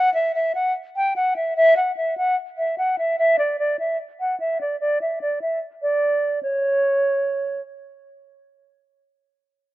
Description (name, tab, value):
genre	hip hop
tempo	148 BPM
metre	4/4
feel	half-time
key	unclear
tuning	A4 = 439 Hz
part	breathy silver concert flute	melody	0.0-7.6 s	C#5 to G5	-19 LUFS	equal	plate reverb
room	moderate small room reverb, RT60 0.5 s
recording	rough home demo mix, low-pass filter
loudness	-19 LUFS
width	side -16 dB against mid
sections	0.0-6.4 A section; 6.4-9.7 B section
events	filter sweep 0.0-6.4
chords	none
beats	0.35 0.75 1.16 | 1.56 1.97 2.37 2.78 | 3.19 3.59 4.00 4.40 | 4.81 5.21 5.62 6.02 | 6.43 6.83 7.24